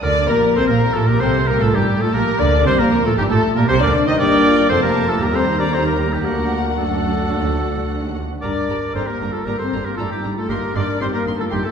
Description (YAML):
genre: quick classical-period movement for symphony orchestra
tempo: 116 BPM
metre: 4/4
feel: rubato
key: G minor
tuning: A4 = 440 Hz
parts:
  - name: muted chamber violin section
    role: melody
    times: 0.0-11.6 s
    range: G4 to C6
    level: -26 LUFS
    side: left 4 dB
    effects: none
  - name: clear clarinet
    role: second line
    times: 0.0-11.7 s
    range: Eb4 to C5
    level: -26 LUFS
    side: left 1 dB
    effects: none
  - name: clear oboe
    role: second line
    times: 0.0-11.7 s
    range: G4 to Eb5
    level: -23 LUFS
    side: right 2 dB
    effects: none
  - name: muted chamber violin section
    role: second line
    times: 0.0-11.7 s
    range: G4 to Eb5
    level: -26 LUFS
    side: left 3 dB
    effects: none
  - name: muted chamber viola section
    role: accompaniment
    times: 0.0-11.6 s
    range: G3 to G4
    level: -26 LUFS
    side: right 3 dB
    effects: none
  - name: mellow French horn section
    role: sustained chords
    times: 0.0-11.7 s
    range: G3 to Eb4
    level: -23 LUFS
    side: left 4 dB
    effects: none
  - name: muted chamber double bass section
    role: bass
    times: 0.0-11.6 s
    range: F1 to Eb2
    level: -24 LUFS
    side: right 3 dB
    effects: none
  - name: muted studio cello section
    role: bass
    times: 0.0-11.6 s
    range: C2 to Eb3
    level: -23 LUFS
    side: right 2 dB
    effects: none
room: wet scoring stage reverb, RT60 1.5 s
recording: heard from further back in the room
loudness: -15 LUFS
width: side -7 dB against mid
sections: 0.0-11.7 A section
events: none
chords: 0.0 Gm; 2.1 Cm; 4.2 Gm; 5.2 Eb; 6.3 D; 8.4 Gm; 10.5 Cm/G